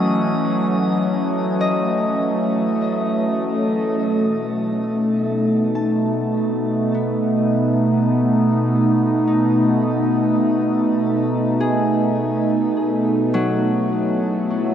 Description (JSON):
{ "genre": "ambient", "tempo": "51 BPM", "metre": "4/4", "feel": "straight", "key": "B mixolydian", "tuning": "A4 = 440 Hz", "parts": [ { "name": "warbly tape-like pad", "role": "sustained chords", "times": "0.0-14.7 s", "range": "B2 to E4", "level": "-17 LUFS", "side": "equal", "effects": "chorus, built-in reverb, phaser, shimmer reverb" }, { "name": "Celtic harp", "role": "arpeggios", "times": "0.0-14.7 s", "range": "F#3 to A5", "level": "-27 LUFS", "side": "left 1 dB", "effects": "tape echo, shimmer reverb" }, { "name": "drifting glass-harmonics texture", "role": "texture", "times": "0.0-4.0 s", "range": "D#5 to D#6", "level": "-32 LUFS", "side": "right 1 dB", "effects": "chorus, built-in reverb, shimmer reverb" } ], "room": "wet cathedral reverb, RT60 5.5 s", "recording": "in a vast, echoing space", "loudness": "-17 LUFS", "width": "side -9 dB against mid", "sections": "0.0-4.0 A section; 4.0-14.7 B section", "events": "fade-in on harp 4.0-14.7", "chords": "0.0 F#m7; 4.0 B7; 13.3 F#m7" }